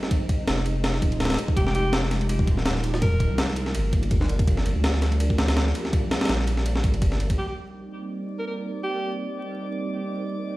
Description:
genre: drum and bass, jungle.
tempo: 165 BPM.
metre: 4/4.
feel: swing 55% on 16ths.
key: C minor.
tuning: A4 = 436 Hz.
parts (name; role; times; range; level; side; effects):
soft string machine; sustained chords; 0.0-10.6 s; F3 to Eb4; -31 LUFS; right 1 dB; ensemble chorus.
breakbeat sampler-style drum kit; drums; 0.0-7.4 s; kick drum, ride cymbal, snare drum; -23 LUFS; equal; none.
saturated sub bass; bass; 0.5-7.4 s; Eb1 to D2; -25 LUFS; equal; none.
bright alto saxophone; melody; 1.6-3.4, 7.4-9.1 s; G4 to Bb4; -32 LUFS; equal; dub echo.
drifting glass-harmonics texture; texture; 8.0-10.6 s; D5 to D6; -37 LUFS; equal; chorus, built-in reverb.
room: light reverb.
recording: played on a big sound system in a bare room, stone room reverb, vinyl crackle.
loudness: -22 LUFS.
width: side -18 dB against mid.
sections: 0.0-7.4 A section; 7.4-10.6 B section.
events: drop 0.0-7.4.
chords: 0.1 Fm7; 3.7 Gm7; 7.4 Cm7.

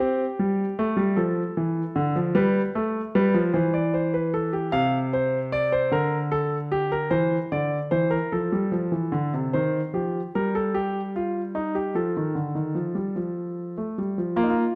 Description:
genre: classical, baroque-style two-part invention for grand piano.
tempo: 50 BPM (dotted quarters).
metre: 6/8.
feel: straight.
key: F major.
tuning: A4 = 440 Hz.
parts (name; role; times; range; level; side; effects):
warm concert grand piano; solo; 0.0-14.8 s; C3 to F5; -25 LUFS; equal; none.
room: moderate recital hall reverb, RT60 1.3 s.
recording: dark, warm production.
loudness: -25 LUFS.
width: mono.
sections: 0.0-9.5 A section; 9.5-14.4 B section.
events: none.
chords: 0.0 C5; 1.2 Dm; 2.4 G7; 3.5 C/E; 4.7 F5/C; 5.9 Gm/D; 7.1 C7; 8.3 F; 9.5 Cm/Eb (rootless); 12.0 F.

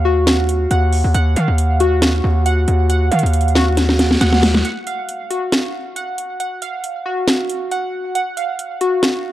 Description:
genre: hip hop, trap.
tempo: 137 BPM.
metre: 4/4.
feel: half-time.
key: Eb minor.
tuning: A4 = 438 Hz.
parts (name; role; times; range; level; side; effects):
glassy digital keys; arpeggios; 0.0-9.3 s; Gb4 to Gb5; -19 LUFS; equal; chorus, tape echo.
distorted 808-style bass; bass; 0.0-4.6 s; Eb2 to Eb3; -15 LUFS; equal; distortion.
trap drum kit; drums; 0.3-9.1 s; hi-hat, snare drum; -18 LUFS; equal; overdrive.
room: digital ambience.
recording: dark, warm production.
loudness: -15 LUFS.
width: side -14 dB against mid.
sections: 0.0-4.6 A section; 4.6-9.3 B section.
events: drum fill 3.8-4.6; break 4.6-9.3.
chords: 0.0 Ebmadd9; 4.6 N.C..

